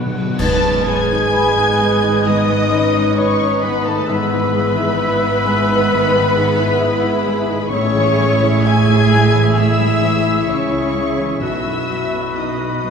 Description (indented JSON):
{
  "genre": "cinematic, emotional film score for orchestra",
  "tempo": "65 BPM",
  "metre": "4/4",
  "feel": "rubato",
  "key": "unclear",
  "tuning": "A4 = 440 Hz",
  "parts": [
    { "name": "muted studio violin section", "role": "melody", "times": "0.0-12.9 s", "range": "B4 to A6", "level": "-23 LUFS", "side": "left 4 dB", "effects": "none" },
    { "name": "clear oboe", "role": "second line", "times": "0.0-12.9 s", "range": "B4 to F#5", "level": "-26 LUFS", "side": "right 1 dB", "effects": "none" },
    { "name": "felt-muted upright piano", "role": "accompaniment", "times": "0.0-12.9 s", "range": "B1 to E5", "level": "-24 LUFS", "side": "left 2 dB", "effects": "none" },
    { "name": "muted studio viola section", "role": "accompaniment", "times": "0.0-12.9 s", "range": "D#3 to B4", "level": "-25 LUFS", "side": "right 1 dB", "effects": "none" },
    { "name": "concert harp", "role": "arpeggios", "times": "0.0-12.9 s", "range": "G#2 to D#6", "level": "-26 LUFS", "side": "left 5 dB", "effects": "none" },
    { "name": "muted studio cello section", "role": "bass", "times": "0.0-12.9 s", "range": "G#2 to C#3", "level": "-22 LUFS", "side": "right 2 dB", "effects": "none" },
    { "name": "muted symphonic double bass section", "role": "bass", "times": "0.0-12.9 s", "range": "G#1 to C#2", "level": "-22 LUFS", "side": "right 4 dB", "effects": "none" },
    { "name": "bright clarinet", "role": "second line", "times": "0.4-12.9 s", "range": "F#4 to B4", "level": "-27 LUFS", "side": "equal", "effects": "none" },
    { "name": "hollow flute section", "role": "second line", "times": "0.4-12.9 s", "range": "A4 to A5", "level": "-24 LUFS", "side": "left 1 dB", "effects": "none" },
    { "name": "muted studio violin section", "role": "second line", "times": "0.4-12.9 s", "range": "A4 to A5", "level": "-24 LUFS", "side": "left 1 dB", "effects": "none" },
    { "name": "warm French horn section", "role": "sustained chords", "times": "0.4-12.9 s", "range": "A3 to B4", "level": "-21 LUFS", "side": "left 1 dB", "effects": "none" },
    { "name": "clash cymbals and concert bass drum", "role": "percussion", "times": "0.4-2.2 s", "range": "none", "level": "-26 LUFS", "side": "equal", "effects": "none" }
  ],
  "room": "wet scoring stage reverb, RT60 1.9 s",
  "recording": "heard from further back in the room",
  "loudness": "-13 LUFS",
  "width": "side -6 dB against mid",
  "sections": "0.4-12.9 A section",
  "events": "band accent 0.4-1.3",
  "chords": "0.4 G#m; 4.1 Emaj7/G#; 7.7 Amaj7; 11.4 B"
}